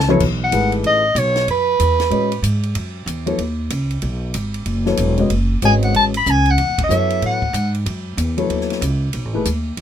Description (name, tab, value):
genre	modal jazz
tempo	188 BPM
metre	4/4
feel	swing 63% on 8ths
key	B mixolydian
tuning	A4 = 436 Hz
part	mellow soprano saxophone	melody	0.0-2.4, 5.6-7.7 s	B4 to B5	-17 LUFS	equal	none
part	upright bass	bass	0.0-9.8 s	E1 to A2	-20 LUFS	right 1 dB	none
part	compact cocktail drum kit	drums	0.0-9.8 s	crash cymbal, hi-hat, kick drum, ride cymbal, snare drum, toms	-27 LUFS	equal	none
part	dark baby grand piano	accompaniment	0.1-9.4 s	E3 to D#5	-20 LUFS	left 4 dB	none
room	light reverb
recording	minimal, uncompressed stereo recording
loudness	-16 LUFS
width	side -9 dB against mid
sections	0.2-9.8 A section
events	drum fill 0.0; band accent 6.7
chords	0.2 B9sus4